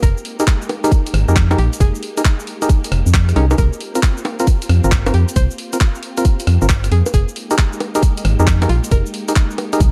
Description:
UK garage, two-step garage; 135 BPM; 4/4; swing 66% on 16ths; F minor; A4 = 438 Hz
string-like resonator pluck; melody; 0.0-9.1 s; Db4 to C5; -30 LUFS; equal; chorus, dub echo
soft string machine; sustained chords; 0.0-9.9 s; Ab3 to G4; -33 LUFS; equal; ensemble chorus, sidechain pumping
organ-like FM bass; bass; 0.0-9.9 s; F1 to F2; -16 LUFS; equal
breakbeat sampler-style drum kit; drums; 0.0-9.9 s; bongos, cabasa, handclaps, hi-hat, rim click; -26 LUFS; equal
electronic kick drum; drums; 0.0-9.9 s; -16 LUFS; equal
percussive organ stab; stabs; 0.4-9.8 s; C4 to Bb4; -23 LUFS; equal; chorus
digital ambience; dark, warm production; -16 LUFS; mono
0.0-9.9 A section
0.0 Fm11; 3.6 C7sus4; 7.1 Fm11

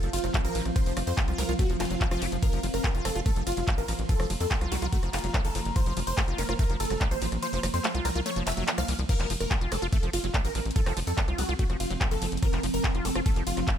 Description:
psychedelic trance; 144 BPM; 4/4; straight; F major; A4 = 440 Hz
supersaw stab; melody; 0.0-13.7 s; F4 to F5; -34 LUFS; equal; phaser, sidechain pumping, ping-pong delay
swarming drone; sustained chords; 0.0-13.8 s; F3 to C4; -36 LUFS; right 1 dB; built-in reverb, sidechain pumping
liquid acid bass; riff; 0.0-13.7 s; E3 to Gb4; -36 LUFS; moving between left 7 dB and right 5 dB; chorus, auto-pan, sidechain pumping, ping-pong delay
tight sequencer bass; bass; 0.0-13.6 s; F1 to F2; -31 LUFS; equal
drum and bass drum kit; drums; 0.0-13.8 s; crash cymbal, handclaps, hi-hat, ride cymbal, rim click; -33 LUFS; equal
warbly tape-like pad; texture; 0.0-9.1 s; F4 to Bb5; -40 LUFS; right 2 dB; chorus, built-in reverb, sidechain pumping
electronic kick drum; drums; 0.3-13.8 s; -26 LUFS; equal
little or no reverb; -25 LUFS; side -9 dB against mid
0.0-9.1 A section; 9.1-13.8 A section
drop 0.0-9.1, 9.1-13.8; kick drops out 7.4-9.1
0.0 F5

